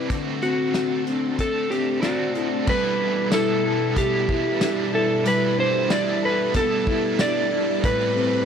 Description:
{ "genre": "dream pop", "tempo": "93 BPM", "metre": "4/4", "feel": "straight", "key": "G major", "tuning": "A4 = 439 Hz", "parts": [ { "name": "overdriven electric guitar", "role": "accompaniment", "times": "0.0-8.4 s", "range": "A2 to B4", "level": "-30 LUFS", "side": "right 5 dB", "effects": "tremolo, analog chorus" }, { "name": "string machine, full ensemble", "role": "sustained chords", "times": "0.0-8.4 s", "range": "B2 to B4", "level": "-28 LUFS", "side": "equal", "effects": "ensemble chorus" }, { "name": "mellow electric guitar", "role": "arpeggios", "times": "0.0-8.4 s", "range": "A2 to B4", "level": "-26 LUFS", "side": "left 3 dB", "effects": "lush chorus, tape echo" }, { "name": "loose indie drum kit", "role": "drums", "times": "0.1-8.0 s", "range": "crash cymbal, hi-hat, kick drum, snare drum, tambourine", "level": "-26 LUFS", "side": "equal", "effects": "none" }, { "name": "electric slide guitar", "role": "melody", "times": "0.4-8.4 s", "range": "F#4 to D5", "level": "-23 LUFS", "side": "right 1 dB", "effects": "tape echo" } ], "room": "light reverb, small room ambience", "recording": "dry, gritty hardware recording", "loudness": "-20 LUFS", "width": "side -7 dB against mid", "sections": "0.0-2.7 A section; 2.7-8.4 B section", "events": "none", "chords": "0.1 D7; 2.7 G69; 7.8 Am9", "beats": "| 0.10 0.74 1.39 2.03 | 2.68 3.32 3.97 4.61 | 5.26 5.90 6.55 7.19 | 7.84" }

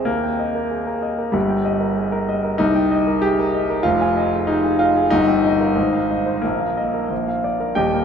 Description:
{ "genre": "classical, virtuoso piano study", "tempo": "95 BPM", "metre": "2/4", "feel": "rubato", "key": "unclear", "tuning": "A4 = 440 Hz", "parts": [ { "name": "warm grand piano", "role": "solo", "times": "0.0-8.0 s", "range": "Eb1 to Ab5", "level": "-17 LUFS", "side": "equal", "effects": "none" } ], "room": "wet cathedral reverb, RT60 6.1 s", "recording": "in a vast, echoing space", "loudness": "-17 LUFS", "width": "side -7 dB against mid", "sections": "0.0-7.8 A section", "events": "none", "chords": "0.1 Eb; 1.3 Eb/G; 2.6 Cm7; 3.9 Fm7; 5.1 Eb/G; 5.8 Fm7/Ab; 6.4 Bbsus4; 7.1 Bb", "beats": "| 0.07 0.71 | 1.34 1.97 | 2.60 3.23 | 3.86 4.49 | 5.12 5.77 | 6.43 7.10 | 7.77" }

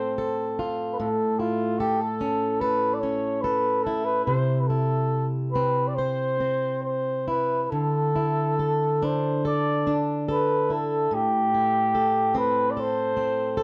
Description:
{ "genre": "celtic folk, Celtic slow air", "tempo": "71 BPM", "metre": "4/4", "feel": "uneven beats, rubato", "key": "unclear", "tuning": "A4 = 441 Hz", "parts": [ { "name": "mellow flugelhorn", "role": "melody", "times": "0.0-13.6 s", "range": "F4 to D5", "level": "-27 LUFS", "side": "equal", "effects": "none" }, { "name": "fingerpicked plugged-in swing-style acoustic guitar", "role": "accompaniment", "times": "0.0-13.6 s", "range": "A2 to C5", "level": "-28 LUFS", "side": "equal", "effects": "none" } ], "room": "wet studio ambience, RT60 0.5 s", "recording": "none", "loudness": "-25 LUFS", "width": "mono", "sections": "0.0-13.6 A section", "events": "none", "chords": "0.0 F/A; 1.0 A; 4.3 C; 7.7 Dsus2; 11.1 Am7", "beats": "0.18 | 0.99 1.80 2.61 3.43 | 4.27 5.12 5.97 6.84 | 7.72 8.60 9.47 10.30 | 11.12 11.95 12.77 13.56" }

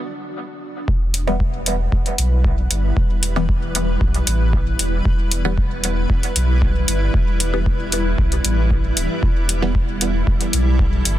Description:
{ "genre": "dub techno", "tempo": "115 BPM", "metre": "4/4", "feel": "straight", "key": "E minor", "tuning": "A4 = 441 Hz", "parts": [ { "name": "granular cloud pad", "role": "sustained chords", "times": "0.9-11.2 s", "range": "G3 to B4", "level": "-26 LUFS", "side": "equal", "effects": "built-in reverb, sidechain pumping" }, { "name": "warm sub bass", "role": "bass", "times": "0.9-11.2 s", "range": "D1 to B1", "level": "-20 LUFS", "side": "equal", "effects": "sidechain pumping" }, { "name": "electronic kick drum", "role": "drums", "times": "0.9-10.9 s", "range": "none", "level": "-19 LUFS", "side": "equal", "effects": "none" }, { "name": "electronic hi-hat", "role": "drums", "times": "1.1-11.2 s", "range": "none", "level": "-20 LUFS", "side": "left 1 dB", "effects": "none" }, { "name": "filtered dub chord stab", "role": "stabs", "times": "1.3-9.7 s", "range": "E3 to B3", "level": "-28 LUFS", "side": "equal", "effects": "phaser, sidechain pumping, dub echo" } ], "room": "digital ambience", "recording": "dense, heavily limited modern master", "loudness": "-16 LUFS", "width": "side -13 dB against mid", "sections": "0.9-11.2 A section", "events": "break 0.0-0.9", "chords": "0.0 N.C.; 0.9 Em", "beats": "0.36 | 0.88 1.40 1.92 2.45 | 2.97 3.49 4.01 4.53 | 5.05 5.58 6.10 6.62 | 7.14 7.66 8.19 8.71 | 9.23 9.75 10.27 10.79" }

